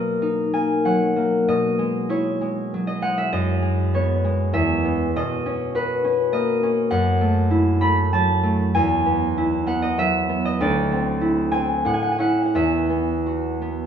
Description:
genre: classical, solo harp piece.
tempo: 83-103 BPM.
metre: 3/4.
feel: rubato.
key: B major, E major from 6.9 s.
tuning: A4 = 436 Hz.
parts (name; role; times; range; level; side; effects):
concert harp; solo; 0.0-13.9 s; D2 to B5; -19 LUFS; equal; none.
room: wet concert hall reverb, RT60 2.3 s.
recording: small room ambience.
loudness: -19 LUFS.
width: side -8 dB against mid.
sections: 0.0-13.9 A section.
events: none.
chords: 0.0 Bmaj7; 1.5 E69/B; 3.3 F#9sus4; 4.5 Eadd9; 5.1 Bmaj9; 6.9 F#m7; 8.7 Eadd9; 10.6 D9; 11.9 A; 12.6 Esus2.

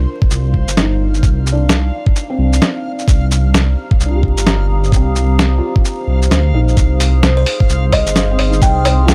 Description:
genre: future garage.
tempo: 130 BPM.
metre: 4/4.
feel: swing 61% on 16ths.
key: C minor.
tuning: A4 = 440 Hz.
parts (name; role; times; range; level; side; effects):
felt-muted upright piano; accompaniment; 0.0-9.1 s; C4 to D5; -26 LUFS; equal; sidechain pumping, analog delay.
dark detuned saw bass; bass; 0.0-9.1 s; G1 to D2; -16 LUFS; equal; tube saturation, sidechain pumping.
backwards swelling texture; texture; 0.0-9.1 s; F5; -32 LUFS; equal; built-in reverb.
electronic kick drum; drums; 0.2-8.7 s; none; -15 LUFS; equal; none.
lo-fi sampler-style drum kit; drums; 0.3-9.1 s; hi-hat, shaker, snare drum, woodblock; -18 LUFS; equal; none.
dark analog pad; sustained chords; 3.7-9.1 s; G4 to Eb6; -26 LUFS; equal; chorus, phaser, vintage 12-bit sampler grit, sidechain pumping.
buzzing kalimba; melody; 7.4-9.1 s; C5 to G5; -21 LUFS; equal; analog delay.
room: little or no reverb.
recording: dry, gritty hardware recording, vinyl crackle.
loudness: -14 LUFS.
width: mono.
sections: 0.0-9.1 A section.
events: none.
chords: 0.0 Cm7; 6.8 Ab.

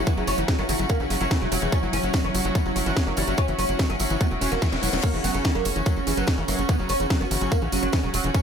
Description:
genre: psychedelic trance.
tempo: 145 BPM.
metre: 4/4.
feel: straight.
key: unclear.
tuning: A4 = 438 Hz.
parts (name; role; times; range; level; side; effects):
pulsing gated texture; sustained chords; 0.0-8.4 s; F#3 to E4; -30 LUFS; right 1 dB; chorus, built-in reverb, sidechain pumping.
tight sequencer bass; bass; 0.0-8.3 s; E1 to A#1; -29 LUFS; equal; none.
warm chamber string section; texture; 0.0-8.4 s; C#4 to F#5; -31 LUFS; right 1 dB; sidechain pumping.
oud; melody; 0.1-8.4 s; C#3 to C#4; -29 LUFS; equal; phaser, sidechain pumping, digital delay.
overdriven acid bass; riff; 0.1-8.4 s; E3 to C#4; -32 LUFS; equal; auto-pan, cassette tape, sidechain pumping, digital delay.
drum and bass drum kit; drums; 0.1-8.4 s; crash cymbal, hi-hat, snare drum; -30 LUFS; right 1 dB; overdrive, small room ambience.
electronic kick drum; drums; 0.1-8.4 s; none; -22 LUFS; equal; overdrive, small room ambience.
tambourine; percussion; 0.1-8.4 s; none; -36 LUFS; right 3 dB; none.
resonant blip pluck; second line; 0.6-8.0 s; F#3 to C#4; -40 LUFS; left 4 dB; none.
reverse cymbal; sound effects; 4.4-5.0 s; none; -34 LUFS; left 7 dB; none.
room: light reverb, digital ambience.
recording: none.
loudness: -21 LUFS.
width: side -7 dB against mid.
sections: 0.0-8.4 A section.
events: reverse cymbal 4.4-5.0; drum fill 4.6-5.0.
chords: 0.0 F#5.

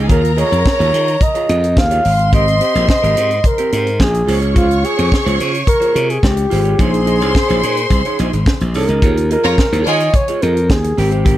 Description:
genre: disco.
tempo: 108 BPM.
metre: 4/4.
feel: straight.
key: unclear.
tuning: A4 = 440 Hz.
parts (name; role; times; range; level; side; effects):
warm studio violin section; second line; 0.0-10.1 s; F4 to Db6; -21 LUFS; left 2 dB; none.
electric guitar at the edge of break-up; accompaniment; 0.0-11.4 s; C4 to Eb5; -22 LUFS; right 7 dB; none.
glassy slap bass; bass; 0.0-11.4 s; Ab1 to Eb3; -16 LUFS; equal; none.
breathy flugelhorn; melody; 0.1-11.4 s; F4 to F5; -17 LUFS; equal; none.
tight funk drum kit; drums; 0.1-11.4 s; hi-hat, kick drum, snare drum; -16 LUFS; equal; none.
room: little or no reverb.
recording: none.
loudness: -12 LUFS.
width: side -13 dB against mid.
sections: 0.0-9.0 A section; 9.0-11.4 B section.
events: none.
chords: 0.1 Eb9sus4; 2.0 Abmaj9; 4.3 Dbmaj7; 6.8 Bbm11; 9.0 Eb9sus4.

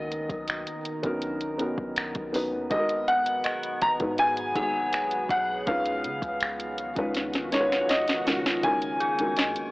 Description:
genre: contemporary R&B.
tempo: 81 BPM.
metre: 4/4.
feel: straight.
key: F# major.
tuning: A4 = 439 Hz.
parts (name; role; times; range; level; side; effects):
warm grand piano; melody; 0.0-9.7 s; C#5 to A#5; -27 LUFS; equal; tape echo.
felt-muted upright piano; accompaniment; 0.0-9.7 s; G#3 to B4; -32 LUFS; left 1 dB; none.
deep dark ambient pad; sustained chords; 0.0-9.7 s; D#3 to A#5; -36 LUFS; equal; chorus, built-in reverb.
warm 808-style bass; bass; 0.0-9.7 s; F#1 to C#3; -43 LUFS; equal; none.
synth chime; texture; 0.0-9.7 s; G#4 to F#5; -36 LUFS; equal; ensemble chorus, phaser, tape echo.
smooth R&B drum kit; drums; 0.1-9.7 s; finger snaps, hi-hat, kick drum, snare drum; -29 LUFS; equal; soft clipping on snare.
swell; sound effects; 6.8-8.6 s; none; -38 LUFS; equal; none.
room: light reverb.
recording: blown-out, overdriven recording, overdrive, AM radio sound.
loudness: -24 LUFS.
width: side -21 dB against mid.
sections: 0.0-8.6 A section; 8.6-9.7 B section.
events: swell 6.8-8.6; drum fill 7.2-8.6.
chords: 0.0 Bmaj7; 2.7 G#m7; 5.7 C#9; 8.6 F#6.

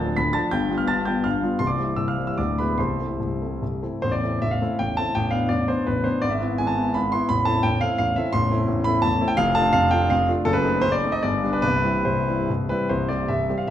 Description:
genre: classical, romantic triple-time dance for piano with dotted rhythms.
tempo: 133-185 BPM.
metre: 3/4.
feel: rubato.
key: A minor, C major from 8.3 s.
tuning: A4 = 443 Hz.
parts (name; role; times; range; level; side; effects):
warm concert grand piano; solo; 0.0-13.7 s; A0 to B6; -20 LUFS; equal; none.
room: wet recital hall reverb, RT60 1.4 s.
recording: minimal, uncompressed stereo recording.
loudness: -20 LUFS.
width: side -11 dB against mid.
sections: 0.0-4.0 A section; 4.0-12.9 B section.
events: none.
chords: 0.0 Dm; 0.5 G7; 1.6 C; 2.4 E7/D; 2.8 Am/C; 4.0 Am; 5.2 Am11; 6.2 E/G#; 7.3 Am; 9.4 Dm/F; 10.5 F#dim7; 11.2 G; 11.6 C; 12.9 C5.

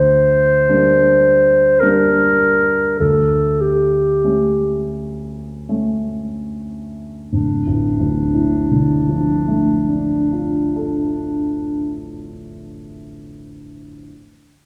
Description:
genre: classical, romantic duo for clarinet and grand piano.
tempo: 35-56 BPM.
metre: 3/4.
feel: rubato.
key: D minor.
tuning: A4 = 440 Hz.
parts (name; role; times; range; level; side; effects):
mellow clarinet; melody; 0.0-12.0 s; D4 to C5; -18 LUFS; equal; none.
warm concert grand piano; accompaniment; 0.0-14.1 s; D1 to A4; -22 LUFS; equal; none.
room: wet recital hall reverb, RT60 1.5 s.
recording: heard from further back in the room.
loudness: -16 LUFS.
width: mono.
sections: 0.0-7.3 A section; 7.3-11.9 B section.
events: slowing down 0.0-7.3.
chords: 0.0 Gm/D; 3.0 A7/D; 7.3 Dm.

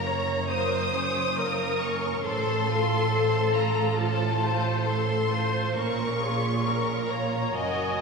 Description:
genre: classical, slow romantic movement for string orchestra.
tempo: 68 BPM.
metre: 4/4.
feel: rubato.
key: unclear.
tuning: A4 = 440 Hz.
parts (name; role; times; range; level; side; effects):
rich studio violin section; melody; 0.0-8.0 s; Ab5 to Eb6; -30 LUFS; left 2 dB; none.
rich studio violin section; second line; 0.0-8.0 s; Bb3 to Db5; -31 LUFS; left 2 dB; none.
rich studio viola section; accompaniment; 0.0-8.0 s; F4 to Eb5; -29 LUFS; left 2 dB; none.
rich studio cello section; bass; 0.0-8.0 s; Gb2 to Bb2; -31 LUFS; right 4 dB; none.
warm studio double bass section; bass; 0.0-8.0 s; Gb1 to Bb1; -32 LUFS; right 5 dB; none.
room: wet scoring stage reverb, RT60 2.1 s.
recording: heard from further back in the room, small room ambience.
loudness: -23 LUFS.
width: side -4 dB against mid.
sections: 0.0-8.0 A section.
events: none.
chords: 0.0 Gb; 2.2 F/A; 5.8 Bbm.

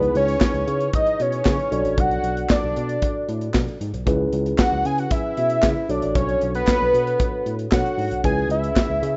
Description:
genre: early-eighties boogie funk.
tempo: 115 BPM.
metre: 4/4.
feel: straight.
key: C# phrygian.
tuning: A4 = 440 Hz.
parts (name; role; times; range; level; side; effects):
fat analog lead; melody; 0.0-9.2 s; B4 to G#5; -24 LUFS; equal; chorus, phaser.
mellow tine electric piano; accompaniment; 0.0-9.2 s; C#4 to D5; -29 LUFS; equal; none.
bright tine electric piano; bass; 0.0-9.2 s; A1 to C#3; -29 LUFS; equal; tube saturation.
modern studio drum kit; drums; 0.0-9.1 s; handclaps, hi-hat, kick drum, snare drum; -24 LUFS; equal; none.
room: studio ambience.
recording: rough home demo mix, nothing above 7.8 kHz.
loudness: -21 LUFS.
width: mono.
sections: 0.0-9.2 A section.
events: none.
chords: 0.0 C#m9; 1.7 Bm7; 4.1 C#m7; 5.9 Bm9; 8.2 C#m7.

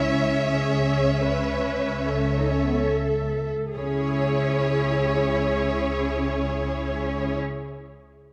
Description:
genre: classical, slow romantic movement for symphony orchestra.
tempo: 36 BPM.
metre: 4/4.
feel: rubato.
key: C# minor.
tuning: A4 = 441 Hz.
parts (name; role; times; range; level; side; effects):
warm studio violin section; melody; 0.0-7.4 s; C#5 to E5; -34 LUFS; equal; none.
warm studio violin section; second line; 0.0-7.4 s; C#5; -33 LUFS; equal; none.
dark studio viola section; accompaniment; 0.0-7.4 s; E4 to B4; -31 LUFS; equal; none.
dark studio double bass section; bass; 0.0-7.4 s; C#2; -29 LUFS; equal; none.
rich chamber cello section; bass; 0.0-7.4 s; B3 to D#4; -31 LUFS; equal; none.
timpani; percussion; 3.8-7.4 s; none; barely audible; none; none.
room: wet concert hall reverb, RT60 2.0 s.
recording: none.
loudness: -24 LUFS.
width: mono.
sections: 0.0-3.8 A section; 3.8-8.3 B section.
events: slowing down 0.0-3.8.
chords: 0.0 C#m.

